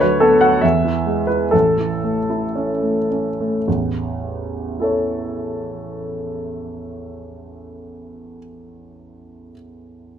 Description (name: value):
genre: classical, romantic character piece for solo piano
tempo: 52-75 BPM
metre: 2/4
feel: rubato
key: A major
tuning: A4 = 441 Hz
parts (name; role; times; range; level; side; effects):
- warm baby grand piano; solo; 0.0-10.2 s; A1 to F#5; -18 LUFS; equal; none
room: wet stone room reverb, RT60 1.4 s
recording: minimal, uncompressed stereo recording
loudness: -17 LUFS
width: side -8 dB against mid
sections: 0.0-3.7 A section; 3.7-8.1 B section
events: slowing down 0.0-3.7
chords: 0.0 Bm/D; 0.6 E; 1.5 A